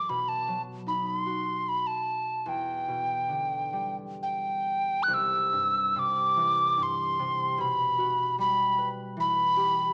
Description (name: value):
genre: celtic folk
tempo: 65-77 BPM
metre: 3/4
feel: rubato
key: E minor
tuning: A4 = 440 Hz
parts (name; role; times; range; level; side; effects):
- mellow hollow tin whistle; melody; 0.0-9.9 s; G5 to F#6; -25 LUFS; equal; none
- concert harp; accompaniment; 0.0-9.9 s; C2 to B4; -36 LUFS; equal; none
room: moderate recital hall reverb, RT60 1.8 s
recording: small speaker sound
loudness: -25 LUFS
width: side -32 dB against mid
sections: 0.0-5.1 A section; 5.1-9.9 B section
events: none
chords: 0.1 B; 2.5 Em7; 5.1 C; 7.6 Emadd9/B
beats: | 0.10 0.88 1.67 | 2.48 3.31 4.20 | 5.11 5.96 6.78 | 7.59 8.38 9.17